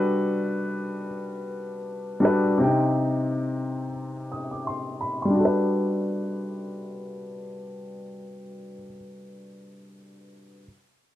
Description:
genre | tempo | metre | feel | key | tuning
hip hop | 86 BPM | 4/4 | swing 64% on 16ths | G major | A4 = 442 Hz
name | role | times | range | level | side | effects
warm upright piano | accompaniment | 0.0-10.7 s | C3 to Eb6 | -25 LUFS | left 1 dB | cassette tape, low-pass filter
room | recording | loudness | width
wet studio reverb, RT60 0.5 s | dark, warm production | -24 LUFS | side -13 dB against mid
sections
0.0-5.3 A section; 5.3-8.1 B section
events
filter sweep on upright piano 0.0-5.3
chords
0.0 Gmaj9; 2.6 Cm; 5.3 Gmaj9

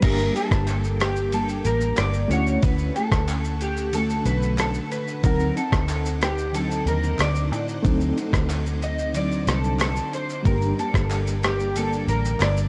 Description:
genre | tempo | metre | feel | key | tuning
indie pop, bedroom pop | 92 BPM | 4/4 | straight | unclear | A4 = 440 Hz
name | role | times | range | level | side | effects
electric guitar through a small old amp | melody | 0.0-12.7 s | G4 to Eb5 | -30 LUFS | equal | analog chorus, dub echo
nylon-string guitar | accompaniment | 0.0-12.7 s | G2 to G4 | -32 LUFS | equal | ensemble chorus, warbly pitch drift, dub echo
reed electric piano | accompaniment | 0.0-12.7 s | G3 to F#5 | -34 LUFS | equal | fast tremolo, cassette tape, dub echo
string machine, violins | sustained chords | 0.0-12.7 s | Bb3 to D6 | -41 LUFS | equal | ensemble chorus
vintage muted fingered electric bass | bass | 0.0-12.7 s | G1 to A2 | -28 LUFS | equal | none
dusty soul sampler-style drum kit | drums | 0.0-12.7 s | crash cymbal, kick drum, ride cymbal, rim click, shaker | -28 LUFS | equal | overdrive
group handclap | percussion | 0.7-12.6 s | none | -42 LUFS | equal | none
room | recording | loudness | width
light reverb | echo-heavy mix, cassette tape | -23 LUFS | mono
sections
0.0-12.7 A section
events
none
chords
0.0 Gm; 2.3 Dmaj7; 5.2 D7b9; 10.5 Gm

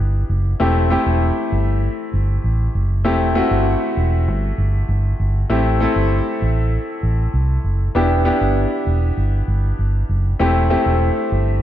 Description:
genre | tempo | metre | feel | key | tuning
1980s-style pop | 98 BPM | 4/4 | straight | unclear | A4 = 440 Hz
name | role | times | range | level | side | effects
bright concert grand piano | accompaniment | 0.0-11.6 s | A3 to A4 | -20 LUFS | left 1 dB | none
vintage muted fingered electric bass | bass | 0.0-11.6 s | E1 to C2 | -17 LUFS | equal | none
room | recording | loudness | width
light reverb, small room reverb | dark, warm production | -16 LUFS | side -12 dB against mid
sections
0.0-11.6 A section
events
none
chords
0.0 Em7; 0.6 C6/E; 5.5 Am7; 8.0 Em7; 10.4 C6/E

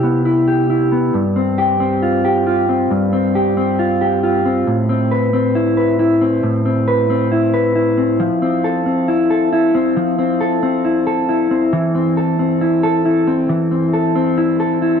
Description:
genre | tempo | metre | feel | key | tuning
dream pop | 68 BPM | 4/4 | straight | G mixolydian | A4 = 440 Hz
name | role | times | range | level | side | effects
mellow electric guitar | solo | 0.0-15.0 s | G2 to B4 | -14 LUFS | left 1 dB | wide subtle chorus, tape echo
room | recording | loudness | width
light reverb, digital ambience | dry, gritty hardware recording | -14 LUFS | side -7 dB against mid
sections
0.0-1.1 A section; 1.1-15.0 B section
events
none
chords
0.0 Cmaj7; 1.1 G7sus4; 4.7 Amadd9; 8.2 Fmaj7; 11.7 C6/E

